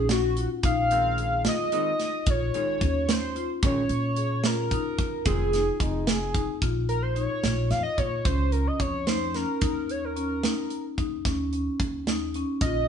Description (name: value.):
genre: progressive instrumental, band music in an uneven meter.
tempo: 220 BPM (eighths).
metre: 11/8.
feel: straight.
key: Bb minor.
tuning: A4 = 440 Hz.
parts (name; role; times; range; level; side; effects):
pulse-width lead; melody; 0.0-12.9 s; Gb4 to F5; -28 LUFS; equal; chorus.
marimba with medium mallets; arpeggios; 0.0-12.9 s; C4 to Ab4; -30 LUFS; left 3 dB; none.
upright bass; bass; 0.0-12.9 s; F1 to Bb2; -30 LUFS; equal; none.
tight metal drum kit; drums; 0.1-12.7 s; hi-hat, kick drum, snare drum; -28 LUFS; right 2 dB; none.
hollow-body jazz guitar; accompaniment; 0.9-5.6 s; Eb3 to Db4; -37 LUFS; right 3 dB; none.
warm trombone; second line; 5.8-6.6 s; Eb4 to Ab4; -33 LUFS; equal; none.
room: moderate studio reverb, RT60 0.9 s.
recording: band playing live in one room, nothing above 10.4 kHz.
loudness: -24 LUFS.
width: side -8 dB against mid.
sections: 0.0-6.6 A section; 6.6-12.9 B section.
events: analog synth lead solo 6.6-12.9.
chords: 0.0 Gbmaj7/Bb; 0.6 Fm7/Bb; 2.3 Bbm7; 5.3 Fm7; 6.6 Bbm; 9.6 Eb5.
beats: 0.10 0.37 | 0.64 0.92 1.19 1.46 1.73 2.00 2.27 2.55 2.82 3.09 3.36 | 3.63 3.90 4.18 4.45 4.72 4.99 5.26 5.54 5.81 6.08 6.35 | 6.62 6.90 7.17 7.44 7.71 7.99 8.26 8.53 8.80 9.07 9.35 | 9.62 9.89 10.16 10.44 10.71 10.98 11.25 11.52 11.80 12.07 12.34 | 12.61.